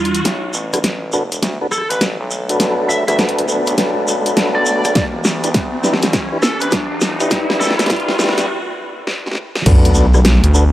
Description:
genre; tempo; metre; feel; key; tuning
glitch hop; 102 BPM; 4/4; swing 64% on 16ths; B minor; A4 = 440 Hz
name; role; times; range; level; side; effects
warm analog pad; sustained chords; 0.0-10.7 s; E2 to G4; -28 LUFS; equal; chorus, sidechain pumping
riser and sub drop; sound effects; 0.0-10.7 s; none; -22 LUFS; equal; none
dubstep drum kit; drums; 0.1-10.5 s; crash cymbal, hi-hat, rim click, snare drum; -18 LUFS; equal; none
shekere; percussion; 0.1-10.7 s; none; -26 LUFS; right 1 dB; none
gritty driven synth bass; bass; 0.2-10.7 s; E1 to D2; -19 LUFS; equal; high-pass filter
mellow tonewheel organ; stabs; 0.7-10.6 s; D4 to B4; -20 LUFS; left 1 dB; overdrive, fast rotary speaker, sidechain pumping, tape echo
biting lead guitar; melody; 1.7-7.9 s; A4 to E5; -24 LUFS; equal; overdrive, tape echo
electronic kick drum; drums; 5.0-9.8 s; none; -16 LUFS; equal; none
room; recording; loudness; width
light reverb; dry, gritty hardware recording, high-pass filter; -13 LUFS; side -14 dB against mid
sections
0.2-9.7 A section; 9.7-10.7 B section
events
riser 0.0, 0.2-8.5; build-up 0.2-9.7; drum fill 0.2-8.5, 9.1-9.7; filter sweep on analog synth pad 0.2-9.7; break 8.5-9.7; drop 9.7-10.7; impact 9.7-10.7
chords
0.2 Bm7; 5.0 Em7; 9.7 Bm7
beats
| 0.25 0.84 1.43 2.02 | 2.60 3.19 3.78 4.37 | 4.96 5.54 6.13 6.72 | 7.31 7.90 8.49 9.07 | 9.66 10.25

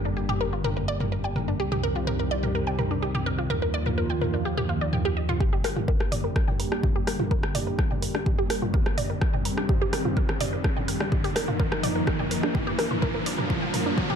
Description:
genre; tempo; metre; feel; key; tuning
melodic techno; 126 BPM; 4/4; straight; G minor; A4 = 440 Hz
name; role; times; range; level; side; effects
warm analog pad; sustained chords; 0.0-14.2 s; D3 to Bb4; -31 LUFS; equal; chorus, sidechain pumping
swelling detuned saw bass; bass; 0.0-5.4 s; G1 to Eb2; -30 LUFS; equal; tube saturation, sidechain pumping
wide unison pluck; arpeggios; 0.1-14.2 s; D4 to G5; -30 LUFS; right 1 dB; phaser, sidechain pumping, digital delay
punchy analog drum machine; drums; 0.3-14.2 s; hi-hat, rim click, toms; -30 LUFS; equal; overdrive, sidechain pumping on toms, sidechain pumping on hats
electronic kick drum; drums; 5.4-14.1 s; none; -26 LUFS; equal; overdrive
riser; sound effects; 7.5-14.2 s; none; -33 LUFS; right 1 dB; none
room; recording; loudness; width
light reverb; dark, warm production, high-pass filter; -23 LUFS; side -7 dB against mid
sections
0.0-5.4 A section; 5.4-14.2 B section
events
build-up 5.4-14.2; filter sweep 5.4-14.2; riser 7.5-14.2; drum fill 13.0-14.2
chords
0.0 Gm; 1.6 Cm; 3.5 Ebsus2; 5.4 Gm; 9.2 Cm; 11.1 Ebsus2; 13.0 Gm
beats
0.17 0.64 1.12 | 1.60 2.07 2.55 3.02 | 3.50 3.98 4.45 4.93 | 5.41 5.88 6.36 6.83 | 7.31 7.79 8.26 8.74 | 9.21 9.69 10.17 10.64 | 11.12 11.60 12.07 12.55 | 13.03 13.50 13.98

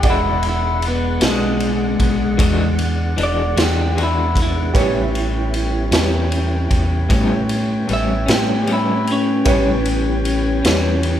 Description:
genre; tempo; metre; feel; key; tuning
slow blues; 51 BPM (dotted quarters); 12/8; straight; unclear; A4 = 439 Hz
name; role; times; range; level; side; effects
electric guitar through a small old amp; melody; 0.0-11.2 s; G#3 to E5; -22 LUFS; left 1 dB; none
bright upright piano; accompaniment; 0.0-11.2 s; G#3 to F#5; -25 LUFS; right 5 dB; none
electric guitar through a small old amp; accompaniment; 0.0-10.9 s; A2 to F#4; -25 LUFS; left 2 dB; tremolo
mellow horn section; sustained chords; 0.0-11.2 s; G#3 to G5; -29 LUFS; left 1 dB; none
fingered electric bass; bass; 0.0-11.2 s; E1 to A2; -20 LUFS; equal; none
raw garage drum kit; drums; 0.0-11.2 s; kick drum, ride cymbal, snare drum; -21 LUFS; equal; none
tonewheel organ; sustained chords; 0.1-11.2 s; E3 to F#5; -27 LUFS; equal; chorus vibrato, slow rotary speaker
room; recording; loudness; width
moderate large studio reverb, RT60 1.5 s; band playing live in one room; -15 LUFS; side -10 dB against mid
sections
0.0-11.2 A section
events
clean electric guitar solo 0.0-11.2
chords
0.0 E9; 4.8 A9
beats
| 0.04 1.22 2.40 3.57 | 4.75 5.93 7.11 8.29 | 9.47 10.65

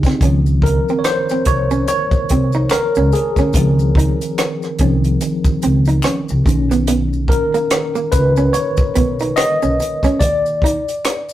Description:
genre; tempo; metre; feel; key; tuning
R&B, neo-soul; 72 BPM; 4/4; swing 58% on 16ths; Db major; A4 = 440 Hz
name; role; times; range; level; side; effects
bright tine electric piano; accompaniment; 0.0-11.3 s; Bb2 to Eb5; -18 LUFS; equal; medium stereo tremolo
upright bass; bass; 0.0-10.7 s; Cb2 to Fb2; -18 LUFS; equal; none
compact cocktail drum kit; drums; 0.0-11.3 s; hi-hat, kick drum, rim click, snare drum; -18 LUFS; equal; none
maracas and finger snaps; percussion; 0.0-11.3 s; none; -32 LUFS; left 4 dB; none
archtop guitar, miked and amplified; second line; 0.1-10.8 s; Bb3 to Eb4; -20 LUFS; right 4 dB; none
room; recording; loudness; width
moderate studio reverb, RT60 0.7 s; rough rehearsal-room recording, tube saturation; -13 LUFS; side -13 dB against mid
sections
0.2-11.3 A section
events
tine electric piano solo 0.2-11.3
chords
0.2 Dbmaj9; 6.5 Cbmaj9; 10.2 Ebmaj7(no3)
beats
| 0.21 1.04 1.88 2.71 | 3.54 4.38 5.21 6.04 | 6.88 7.71 8.54 9.38 | 10.21 11.04

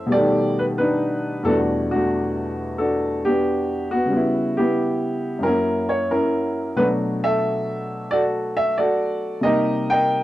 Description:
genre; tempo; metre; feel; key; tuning
solo jazz; 90 BPM; 4/4; swing 69% on 8ths; unclear; A4 = 440 Hz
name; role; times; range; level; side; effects
warm upright piano; solo; 0.0-10.2 s; E2 to G5; -19 LUFS; equal; cassette tape
room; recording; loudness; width
moderate small room ambience, RT60 0.5 s; home recording on cassette; -19 LUFS; side -15 dB against mid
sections
0.0-10.2 A section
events
none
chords
0.1 B7alt; 1.4 Em11; 4.1 C#m7b5; 5.4 F#7; 6.8 Bm7; 9.4 Cm7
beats
0.12 0.79 | 1.45 2.12 2.78 3.44 | 4.11 4.77 5.44 6.10 | 6.77 7.43 8.10 8.76 | 9.43 10.09

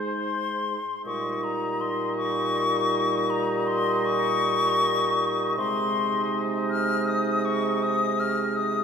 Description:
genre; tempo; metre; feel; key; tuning
classical, slow romantic movement for wind quintet; 53 BPM (dotted quarters); 12/8; rubato; Ab major; A4 = 443 Hz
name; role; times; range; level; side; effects
bright silver concert flute; melody; 0.0-8.8 s; Bb5 to F6; -26 LUFS; left 4 dB; none
warm oboe; second line; 0.0-8.8 s; C5 to Eb5; -31 LUFS; left 1 dB; none
clear clarinet; accompaniment; 0.0-8.8 s; Eb4; -34 LUFS; right 7 dB; none
warm French horn; accompaniment; 0.0-8.8 s; G3 to Ab3; -30 LUFS; right 4 dB; none
mellow bassoon; bass; 0.0-8.8 s; Ab2 to C3; -30 LUFS; left 1 dB; none
room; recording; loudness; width
wet church reverb, RT60 3.2 s; recorded in a church or concert hall; -23 LUFS; side -6 dB against mid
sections
0.0-8.8 A section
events
none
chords
0.0 Ab; 1.1 Eb7/Bb; 5.6 Ab/C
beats
| 1.06 2.19 3.31 4.44 | 5.58 6.71 7.83

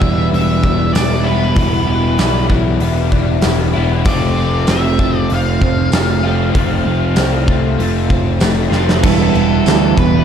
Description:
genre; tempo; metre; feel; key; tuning
rock, shoegaze and dream pop; 96 BPM; 4/4; straight; E minor; A4 = 440 Hz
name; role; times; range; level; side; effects
octave-fuzz lead guitar; melody; 0.0-10.2 s; A4 to F5; -22 LUFS; left 1 dB; distortion, slapback echo
twelve-string electric guitar; arpeggios; 0.0-10.2 s; E3 to G4; -25 LUFS; right 1 dB; analog chorus, slapback echo
electric guitar through a small old amp; riff; 0.0-10.2 s; E3 to B4; -20 LUFS; right 12 dB; reverse reverb
overdriven electric guitar; riff; 0.0-10.2 s; E2 to F4; -22 LUFS; left 12 dB; analog chorus
overdriven electric guitar; riff; 0.0-10.2 s; E3 to F4; -22 LUFS; left 1 dB; none
fuzz picked electric bass; bass; 0.0-10.2 s; E1 to D2; -16 LUFS; equal; overdrive
huge arena drum kit; drums; 0.0-10.1 s; crash cymbal, hi-hat, kick drum, snare drum; -18 LUFS; equal; none
tambourine; percussion; 0.9-9.8 s; none; -31 LUFS; right 12 dB; none
room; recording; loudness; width
small room ambience; dark, warm production; -12 LUFS; side -8 dB against mid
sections
0.0-9.0 A section; 9.0-10.2 B section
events
drum fill 8.7-9.0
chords
0.0 Em7; 4.1 F; 9.0 Em7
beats
0.32 0.95 | 1.57 2.19 2.81 3.44 | 4.06 4.68 5.31 5.93 | 6.55 7.18 7.80 8.42 | 9.04 9.67

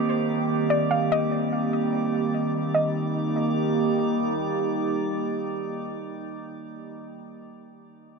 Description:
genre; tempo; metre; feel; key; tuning
hip hop; free time; none; none; Eb major; A4 = 439 Hz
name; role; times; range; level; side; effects
mallet-like synth pluck; melody; 0.0-3.9 s; C5 to F5; -28 LUFS; left 2 dB; chorus, low-pass filter, tape echo
warbly tape-like pad; sustained chords; 0.0-6.8 s; Eb3 to G4; -25 LUFS; right 2 dB; chorus, built-in reverb, low-pass filter
drifting glass-harmonics texture; texture; 0.0-6.8 s; G3 to D6; -34 LUFS; left 2 dB; chorus, built-in reverb
room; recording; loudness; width
moderate huge ambient reverb, RT60 5.0 s; none; -23 LUFS; side -4 dB against mid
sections
0.0-2.7 A section; 2.7-6.0 B section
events
filter sweep 0.0-2.7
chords
0.0 Ebmaj7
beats
free time

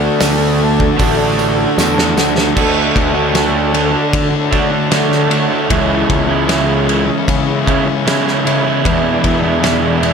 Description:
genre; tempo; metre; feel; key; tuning
rock, shoegaze and dream pop; 76 BPM; 4/4; straight; unclear; A4 = 440 Hz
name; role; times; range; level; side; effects
lush unison pad; sustained chords; 0.0-10.1 s; F#4 to B5; -24 LUFS; left 2 dB; chorus
fingerpicked twelve-string acoustic guitar; arpeggios; 0.0-10.1 s; E3 to F#4; -24 LUFS; left 10 dB; ensemble chorus, digital delay
crunchy overdriven guitar; riff; 0.0-10.1 s; E2 to F#4; -16 LUFS; right 9 dB; reverse reverb
thick fuzz guitar; riff; 0.0-10.1 s; E2 to D4; -19 LUFS; left 11 dB; distortion, wide subtle chorus
fuzz picked electric bass; bass; 0.0-10.1 s; A1 to D3; -19 LUFS; equal; overdrive
loose indie drum kit; drums; 0.2-10.1 s; crash cymbal, hi-hat, kick drum, ride cymbal, snare drum; -18 LUFS; equal; none
tambourine; percussion; 0.2-2.4 s; none; -28 LUFS; right 8 dB; none
room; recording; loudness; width
light reverb, studio ambience; none; -11 LUFS; side -6 dB against mid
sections
0.0-2.6 A section; 2.6-10.1 B section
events
drum fill 1.8-2.6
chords
0.0 D; 2.6 Dmaj7; 5.7 C#m7; 8.8 E7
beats
0.21 0.99 1.78 | 2.56 3.35 4.13 4.92 | 5.70 6.49 7.27 8.06 | 8.84 9.63

